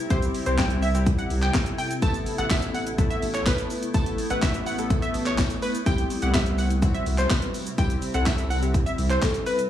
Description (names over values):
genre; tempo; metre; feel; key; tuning
dance-pop; 125 BPM; 4/4; straight; unclear; A4 = 440 Hz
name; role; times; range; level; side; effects
granular cloud pad; sustained chords; 0.0-9.7 s; C3 to A4; -32 LUFS; left 1 dB; built-in reverb, sidechain pumping
glassy wavetable pluck; melody; 0.1-9.6 s; B4 to A5; -30 LUFS; right 1 dB; chorus, sidechain pumping, tape echo
chorused retro synth keys; accompaniment; 0.1-9.4 s; G3 to B4; -32 LUFS; left 2 dB; tremolo
saturated sub bass; bass; 0.1-9.2 s; A1 to C2; -26 LUFS; equal; sidechain pumping
house drum kit; drums; 0.1-9.7 s; handclaps, hi-hat, kick drum, shaker, snare drum; -25 LUFS; equal; none
tambourine; percussion; 2.0-9.6 s; none; -44 LUFS; left 2 dB; none
folk marimba with soft mallets; melody; 9.2-9.7 s; A4 to B4; -28 LUFS; left 3 dB; none
room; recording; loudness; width
digital ambience; dry, gritty hardware recording, small room reverb; -22 LUFS; side -11 dB against mid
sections
0.0-9.7 A section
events
drop 0.0-9.7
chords
0.0 C; 2.0 Asus2; 5.9 C